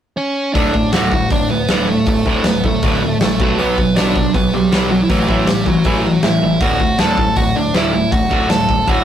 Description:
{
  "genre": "punk rock",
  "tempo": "158 BPM",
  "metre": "4/4",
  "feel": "straight",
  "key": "D major",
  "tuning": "A4 = 442 Hz",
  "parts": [
    { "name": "dark smooth lead guitar", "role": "melody", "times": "0.2-9.0 s", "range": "F#3 to A5", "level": "-18 LUFS", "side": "right 2 dB", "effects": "overdrive" },
    { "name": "distorted electric guitar", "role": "riff", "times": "0.5-9.0 s", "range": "D2 to B3", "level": "-17 LUFS", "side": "equal", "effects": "distortion" },
    { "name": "growling picked electric bass", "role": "bass", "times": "0.6-9.0 s", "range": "D1 to A2", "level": "-24 LUFS", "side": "left 1 dB", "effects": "overdrive" },
    { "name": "big rock drum kit", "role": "drums", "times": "0.6-9.0 s", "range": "hi-hat, kick drum, snare drum", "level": "-18 LUFS", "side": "equal", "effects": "none" }
  ],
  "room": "light reverb",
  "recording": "rough rehearsal-room recording, tube saturation",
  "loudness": "-13 LUFS",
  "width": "side -10 dB against mid",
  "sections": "0.6-9.0 A section",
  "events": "none",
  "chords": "0.0 N.C.; 0.6 D; 3.4 Bm; 5.1 A5; 6.6 D"
}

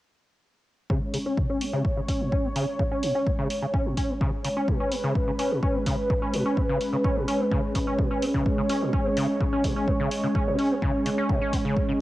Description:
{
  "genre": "acid house",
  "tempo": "127 BPM",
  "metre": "4/4",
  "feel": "straight",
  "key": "unclear",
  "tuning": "A4 = 442 Hz",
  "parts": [
    { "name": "warm analog pad", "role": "sustained chords", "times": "0.9-12.0 s", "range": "G#3 to C#5", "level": "-27 LUFS", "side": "equal", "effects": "chorus, sidechain pumping" },
    { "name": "overdriven acid bass", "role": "riff", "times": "0.9-11.9 s", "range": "B2 to C#4", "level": "-28 LUFS", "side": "equal", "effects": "tube saturation, wide subtle chorus, sidechain pumping, tape echo" },
    { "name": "electronic kick drum", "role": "drums", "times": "0.9-11.9 s", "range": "none", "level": "-27 LUFS", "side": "equal", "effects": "cassette tape" },
    { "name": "electronic hi-hat", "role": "drums", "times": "1.1-11.6 s", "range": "none", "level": "-37 LUFS", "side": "equal", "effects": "cassette tape" }
  ],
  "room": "light reverb",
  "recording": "home recording on cassette",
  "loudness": "-23 LUFS",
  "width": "side -16 dB against mid",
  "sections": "0.9-12.0 A section",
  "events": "filter sweep on acid bass 0.9-12.0",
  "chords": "0.9 C#5"
}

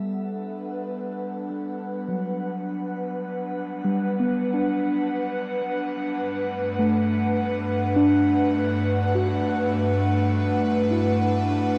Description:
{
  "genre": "ambient",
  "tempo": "51 BPM",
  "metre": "3/4",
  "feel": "straight",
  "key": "G major",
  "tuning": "A4 = 440 Hz",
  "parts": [
    { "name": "airy breathy pad", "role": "sustained chords", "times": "0.0-11.8 s", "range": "G2 to F#5", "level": "-27 LUFS", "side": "equal", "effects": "chorus, shimmer reverb" },
    { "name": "muted felt-like synth keys", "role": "arpeggios", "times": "0.0-11.8 s", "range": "F#3 to F#4", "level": "-28 LUFS", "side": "equal", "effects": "chorus, dub echo, shimmer reverb" }
  ],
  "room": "wet plate reverb, RT60 2.4 s",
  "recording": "echo-heavy mix",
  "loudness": "-24 LUFS",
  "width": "mono",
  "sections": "0.0-11.8 A section",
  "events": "filter sweep on analog synth pad 0.0-11.8",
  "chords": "0.0 Gmaj7; 6.2 Bm7/G"
}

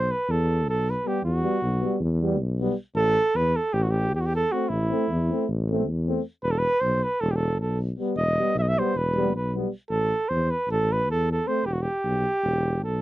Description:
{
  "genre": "balkan folk, Balkan brass band",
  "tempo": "311 BPM (eighths)",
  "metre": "9/8",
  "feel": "straight",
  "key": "E harmonic minor",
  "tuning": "A4 = 440 Hz",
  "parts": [
    { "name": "mellow flugelhorn", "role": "melody", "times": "0.0-13.0 s", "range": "E4 to E5", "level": "-25 LUFS", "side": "right 2 dB", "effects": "none" },
    { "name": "mellow tuba", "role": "bass", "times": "0.0-13.0 s", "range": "E1 to E2", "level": "-26 LUFS", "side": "left 1 dB", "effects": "none" },
    { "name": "mellow trombone", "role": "accompaniment", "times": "1.0-11.6 s", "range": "B3 to C4", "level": "-30 LUFS", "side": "left 12 dB", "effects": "none" },
    { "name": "mellow euphonium", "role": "accompaniment", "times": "1.1-11.6 s", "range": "G3 to A3", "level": "-28 LUFS", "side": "right 4 dB", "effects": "none" }
  ],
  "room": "little or no reverb",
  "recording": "dry, close 1970s-style studio recording",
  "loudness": "-22 LUFS",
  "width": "side -15 dB against mid",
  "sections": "0.0-13.0 A section",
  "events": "none",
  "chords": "0.0 Em; 3.0 Am; 6.4 Em; 9.9 Am; 11.6 Em"
}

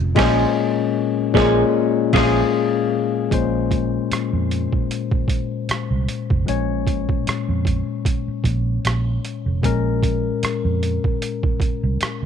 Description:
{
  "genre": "R&B, neo-soul",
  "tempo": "76 BPM",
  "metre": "4/4",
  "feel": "swing 56% on 16ths",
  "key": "Bb minor",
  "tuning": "A4 = 439 Hz",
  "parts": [
    { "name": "barky tine electric piano", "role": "accompaniment", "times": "0.0-12.3 s", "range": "Bb2 to F5", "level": "-21 LUFS", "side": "left 8 dB", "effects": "overdrive, phaser" },
    { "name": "vintage muted fingered electric bass", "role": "bass", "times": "0.0-12.3 s", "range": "F1 to F2", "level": "-22 LUFS", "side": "right 2 dB", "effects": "none" },
    { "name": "electric guitar through a small old amp", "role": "second line", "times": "0.2-2.4 s", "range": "Db4 to C5", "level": "-23 LUFS", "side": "right 15 dB", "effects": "spring reverb" },
    { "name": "boom bap sampler-style drum kit", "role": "drums", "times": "0.2-12.2 s", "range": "crash cymbal, hi-hat, kick drum, rim click, snare drum", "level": "-23 LUFS", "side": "right 2 dB", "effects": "none" }
  ],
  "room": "little or no reverb",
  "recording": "1960s-style stereo with parts hard left and right",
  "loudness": "-18 LUFS",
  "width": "side -7 dB against mid",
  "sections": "0.0-3.3 A section; 3.3-12.3 B section",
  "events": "band accent 0.2-3.3",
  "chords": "0.0 Bbm9"
}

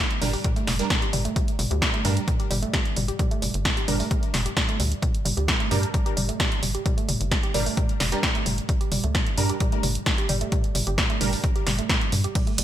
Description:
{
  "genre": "driving peak-time techno",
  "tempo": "131 BPM",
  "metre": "4/4",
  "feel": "straight",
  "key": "G minor",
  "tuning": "A4 = 440 Hz",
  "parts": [
    { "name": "woody wave-folded pluck", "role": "riff", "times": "0.0-12.6 s", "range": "G3 to G4", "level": "-31 LUFS", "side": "right 2 dB", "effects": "chorus, overdrive, sidechain pumping, ping-pong delay" },
    { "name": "punchy analog drum machine", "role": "drums", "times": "0.1-12.6 s", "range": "hi-hat, ride cymbal, snare drum, toms", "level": "-26 LUFS", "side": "left 1 dB", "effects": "gated reverb" },
    { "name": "rave stab", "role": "stabs", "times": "0.2-11.3 s", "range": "G3 to Bb4", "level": "-31 LUFS", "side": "right 3 dB", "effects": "chorus, built-in reverb, sidechain pumping, ping-pong delay" },
    { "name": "tight sequencer bass", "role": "bass", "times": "0.2-12.6 s", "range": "F1 to G2", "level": "-26 LUFS", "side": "equal", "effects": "sidechain pumping" },
    { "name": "electronic kick drum", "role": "drums", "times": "0.4-12.4 s", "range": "none", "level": "-25 LUFS", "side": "equal", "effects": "none" }
  ],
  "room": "light reverb, digital ambience",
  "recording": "bright 1980s-style digital production",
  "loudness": "-21 LUFS",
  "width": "side -12 dB against mid",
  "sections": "0.0-12.6 A section",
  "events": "none",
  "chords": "0.0 Gm"
}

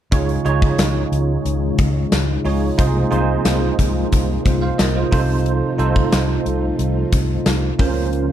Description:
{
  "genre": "1980s-style pop",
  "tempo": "90 BPM",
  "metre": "4/4",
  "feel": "straight",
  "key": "Db major",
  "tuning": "A4 = 440 Hz",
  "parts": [
    { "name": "bell-like tine electric piano", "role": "accompaniment", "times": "0.1-8.3 s", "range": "C3 to F5", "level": "-21 LUFS", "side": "right 5 dB", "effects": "ensemble chorus" },
    { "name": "string machine, cellos", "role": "sustained chords", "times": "0.1-8.3 s", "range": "C3 to C5", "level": "-25 LUFS", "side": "left 4 dB", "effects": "ensemble chorus" },
    { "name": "vintage muted fingered electric bass", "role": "bass", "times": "0.1-8.3 s", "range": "C2 to Db2", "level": "-21 LUFS", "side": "left 1 dB", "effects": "none" },
    { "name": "gated 80s drum kit", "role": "drums", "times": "0.1-8.3 s", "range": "hi-hat, kick drum, snare drum", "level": "-19 LUFS", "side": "left 1 dB", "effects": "none" },
    { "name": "tambourine", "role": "percussion", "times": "0.8-7.6 s", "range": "none", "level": "-33 LUFS", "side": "left 20 dB", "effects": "none" }
  ],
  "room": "light reverb",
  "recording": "none",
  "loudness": "-16 LUFS",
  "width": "side -10 dB against mid",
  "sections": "0.1-8.3 A section",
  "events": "none",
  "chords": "0.1 Dbadd9; 2.8 Ab6/C; 5.1 F7/C; 7.8 Bbmadd9/Db"
}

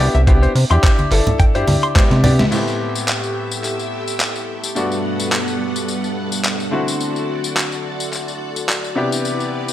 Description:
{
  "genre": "nu-disco, nu disco",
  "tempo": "107 BPM",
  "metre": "4/4",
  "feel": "swing 55% on 16ths",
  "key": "A dorian",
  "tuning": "A4 = 440 Hz",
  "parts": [
    { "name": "bright concert grand piano", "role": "accompaniment", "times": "0.0-9.7 s", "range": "G2 to A4", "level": "-22 LUFS", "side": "left 2 dB", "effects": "digital delay" },
    { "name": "direct-recorded clean electric guitar", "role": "riff", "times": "0.0-2.5 s", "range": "C5 to C6", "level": "-24 LUFS", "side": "left 3 dB", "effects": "analog chorus, digital delay" },
    { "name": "chorused synth bass", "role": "bass", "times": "0.0-2.4 s", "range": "G1 to C3", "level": "-14 LUFS", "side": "equal", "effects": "none" },
    { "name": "dusty soul sampler-style drum kit", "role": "drums", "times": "0.1-9.7 s", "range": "crash cymbal, handclaps, hi-hat, snare drum, tambourine", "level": "-22 LUFS", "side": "equal", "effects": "overdrive, studio reverb" },
    { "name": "electronic kick drum", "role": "drums", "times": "0.3-2.1 s", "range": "none", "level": "-13 LUFS", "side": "equal", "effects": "overdrive, studio reverb" },
    { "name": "congas", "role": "percussion", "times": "1.0-2.5 s", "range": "none", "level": "-20 LUFS", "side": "right 1 dB", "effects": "none" },
    { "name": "string machine, full ensemble", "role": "sustained chords", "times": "2.5-9.7 s", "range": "G3 to F#5", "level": "-24 LUFS", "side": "right 1 dB", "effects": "ensemble chorus, sidechain pumping" }
  ],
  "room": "light reverb",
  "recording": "none",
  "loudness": "-16 LUFS",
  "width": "side -12 dB against mid",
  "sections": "0.0-2.5 A section; 2.5-9.7 B section",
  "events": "drum fill 2.0-2.5; band accent 2.4",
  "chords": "0.0 Cmaj9; 2.5 Am7; 4.8 Gmaj9; 6.7 D7; 9.0 Cmaj9"
}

